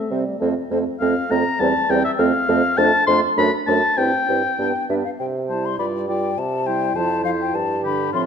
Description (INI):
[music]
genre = quick classical-period movement for wind quintet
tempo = 101 BPM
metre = 2/4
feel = straight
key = C major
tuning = A4 = 439 Hz
[part]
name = mellow French horn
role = accompaniment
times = 0.0-8.3 s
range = D3 to C4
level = -27 LUFS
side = equal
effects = none
[part]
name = mellow hollow concert flute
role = melody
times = 0.1-8.2 s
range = C5 to C6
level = -27 LUFS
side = left 8 dB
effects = none
[part]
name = mellow clarinet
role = accompaniment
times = 0.1-8.3 s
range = C4 to F4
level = -25 LUFS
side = right 7 dB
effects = none
[part]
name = mellow bassoon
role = bass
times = 0.1-8.3 s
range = E2 to C3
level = -23 LUFS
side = right 2 dB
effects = none
[part]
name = warm oboe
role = second line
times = 1.0-8.3 s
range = F4 to C6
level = -21 LUFS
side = left 3 dB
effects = none
[sound]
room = wet scoring stage reverb, RT60 1.5 s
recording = none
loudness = -17 LUFS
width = side -7 dB against mid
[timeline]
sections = 0.0-5.2 A section; 5.2-8.3 B section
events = none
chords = 0.4 F; 1.6 C/E; 2.2 F; 2.8 Dm7/F; 3.4 D/F#; 4.0 C/G; 4.6 G; 5.2 C; 5.8 G7(no3); 6.4 C; 7.0 Fmaj7; 7.5 G